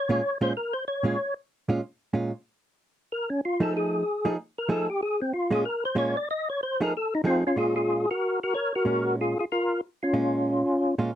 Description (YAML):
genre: jazz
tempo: 187 BPM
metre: 4/4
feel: swing 61% on 8ths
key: Bb minor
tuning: A4 = 442 Hz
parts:
  - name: percussive tonewheel organ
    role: melody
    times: 0.0-11.0 s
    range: C4 to Eb5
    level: -25 LUFS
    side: left 1 dB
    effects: slow rotary speaker, chorus vibrato
  - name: hollow-body jazz guitar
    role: accompaniment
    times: 0.1-11.1 s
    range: Bb2 to G#4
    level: -26 LUFS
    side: right 2 dB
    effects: none
room: light reverb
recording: dry, close 1970s-style studio recording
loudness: -24 LUFS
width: side -11 dB against mid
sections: 0.0-7.6 A section; 7.6-11.2 B section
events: tonewheel organ solo 0.0-7.6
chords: 0.0 Bbm7; 2.4 F7#9; 5.0 Bbm7; 6.3 F7#9; 7.6 Bbm7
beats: 0.21 0.53 0.84 | 1.17 1.48 1.80 2.12 | 2.44 2.76 3.08 3.40 | 3.72 4.04 4.36 4.68 | 5.00 5.32 5.64 5.96 | 6.29 6.61 6.93 7.25 | 7.57 7.89 8.21 8.53 | 8.86 9.18 9.50 9.82 | 10.14 10.46 10.79